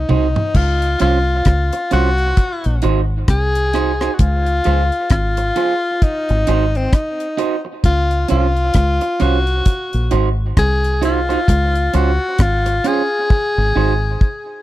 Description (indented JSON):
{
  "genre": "roots reggae",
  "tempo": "66 BPM",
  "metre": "4/4",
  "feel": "swing 60% on 16ths",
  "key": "unclear",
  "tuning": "A4 = 441 Hz",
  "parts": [
    { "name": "warm tenor saxophone", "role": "melody", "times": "0.0-14.6 s", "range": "C4 to Ab4", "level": "-19 LUFS", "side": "left 2 dB", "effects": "tape echo" },
    { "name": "deep dub fingered electric bass", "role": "bass", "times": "0.0-14.2 s", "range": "Ab1 to Db2", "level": "-17 LUFS", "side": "equal", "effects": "none" },
    { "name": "electric guitar at the edge of break-up", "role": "accompaniment", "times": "0.1-13.9 s", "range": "Db4 to C5", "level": "-22 LUFS", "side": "right 8 dB", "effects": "tape echo" },
    { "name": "deep reggae drum kit", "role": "drums", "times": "0.1-14.5 s", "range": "crash cymbal, hi-hat, kick drum, rim click, toms", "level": "-15 LUFS", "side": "equal", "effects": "none" }
  ],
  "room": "little or no reverb",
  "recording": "dry, close 1970s-style studio recording",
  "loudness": "-14 LUFS",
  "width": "side -15 dB against mid",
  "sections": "0.6-14.6 A section",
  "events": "drum fill 0.0-0.6, 13.3-14.6",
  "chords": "0.0 Ab7 (rootless); 0.6 Dbmaj7; 2.4 Ab7; 4.2 Dbmaj7; 6.0 Ab7; 7.8 Dbmaj7; 9.7 Ab7; 11.5 Dbmaj7; 13.3 Ab7"
}